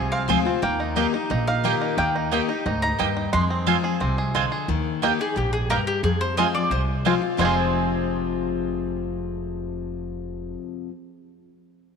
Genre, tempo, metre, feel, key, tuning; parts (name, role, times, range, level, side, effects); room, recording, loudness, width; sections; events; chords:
bluegrass; 178 BPM; 4/4; straight; F minor; A4 = 442 Hz
bluegrass banjo; melody; 0.0-10.6 s; Ab3 to Ab4; -29 LUFS; right 5 dB
mandolin; melody; 0.0-10.5 s; G4 to C6; -28 LUFS; equal
picked steel-string acoustic guitar; accompaniment; 0.0-10.9 s; F2 to G4; -26 LUFS; left 8 dB
upright bass; bass; 0.0-10.5 s; F1 to F2; -28 LUFS; right 1 dB
mandolin; stabs; 0.3-10.9 s; Bb3 to Ab5; -28 LUFS; right 10 dB
moderate plate reverb, RT60 3.3 s; 1960s-style stereo with parts hard left and right; -21 LUFS; side -6 dB against mid
0.0-4.7 A section; 4.7-7.4 B section; 7.4-10.1 C section
0.0 Fm; 0.6 Eb; 3.3 Fm; 4.7 Eb; 6.0 Fm